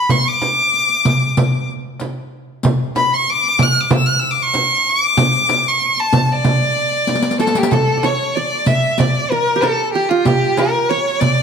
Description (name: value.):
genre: Arabic maqam ensemble.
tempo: 94 BPM.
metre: 4/4.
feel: straight.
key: D maqam rast, A maqam hijaz from 7.7 s.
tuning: A4 = 441 Hz.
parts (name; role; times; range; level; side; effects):
clear violin; melody; 0.0-11.4 s; F4 to F6+47c; -16 LUFS; left 1 dB; none.
frame drum; percussion; 0.1-11.4 s; none; -18 LUFS; right 2 dB; none.
riq; percussion; 0.1-11.4 s; none; -24 LUFS; left 4 dB; none.
qanun; second line; 7.4-11.4 s; F4 to D5; -21 LUFS; right 5 dB; none.
room: moderate recital hall reverb, RT60 1.8 s.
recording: close, detailed microphones.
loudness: -13 LUFS.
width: side -6 dB against mid.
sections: 0.0-7.7 A section; 7.7-11.4 B section.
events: drum fill 7.1-7.7.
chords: none.